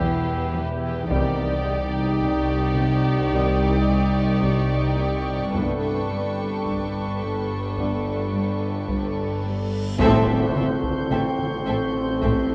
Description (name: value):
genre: cinematic, suspense film score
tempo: 54 BPM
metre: 4/4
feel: straight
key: unclear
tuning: A4 = 440 Hz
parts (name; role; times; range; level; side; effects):
- dark studio violin section; melody; 0.0-12.3 s; B4 to E5; -36 LUFS; equal; none
- warm chamber violin section; second line; 0.0-12.3 s; G4 to A4; -32 LUFS; equal; none
- dark studio viola section; accompaniment; 0.0-12.3 s; C4 to E4; -32 LUFS; equal; none
- warm studio cello section; riff; 0.0-12.5 s; E2 to C4; -33 LUFS; equal; none
- dark studio double bass section; bass; 0.0-12.3 s; E1 to C2; -30 LUFS; equal; none
- warm studio cello section; bass; 0.0-12.3 s; C2 to A2; -31 LUFS; equal; none
- bowed-like drone; drone; 0.0-12.5 s; G1 to E2; -32 LUFS; equal; none
- dark studio violin section; texture; 0.0-12.5 s; G5 to C7; -39 LUFS; equal; none
- small celesta; texture; 0.0-12.5 s; G4 to G5; -37 LUFS; equal; none
- bright trombone section; sustained chords; 1.1-8.2 s; D3 to A3; -36 LUFS; equal; none
- warm French horn section; sustained chords; 1.1-12.5 s; B3 to D5; -30 LUFS; equal; none
- taiko ensemble; drums; 1.1-12.5 s; none; -33 LUFS; equal; none
- reverse cymbal and impact; sound effects; 9.6-12.5 s; none; -38 LUFS; equal; none
- tam-tam; percussion; 10.0-12.5 s; none; -33 LUFS; equal; none
room: wet scoring stage reverb, RT60 2.0 s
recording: worn, warbling old tape, cassette tape, warbly pitch drift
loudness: -23 LUFS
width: mono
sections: 0.0-10.0 A section; 10.0-12.5 B section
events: reverse cymbal 9.6-10.0; band accent 10.0-11.1; impact 10.0-12.5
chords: 0.0 Em; 1.1 Cmadd9; 5.6 Gadd9; 10.0 Am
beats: 0.00 | 1.11 2.22 3.33 4.44 | 5.55 6.67 7.78 8.89 | 10.00 11.11 12.22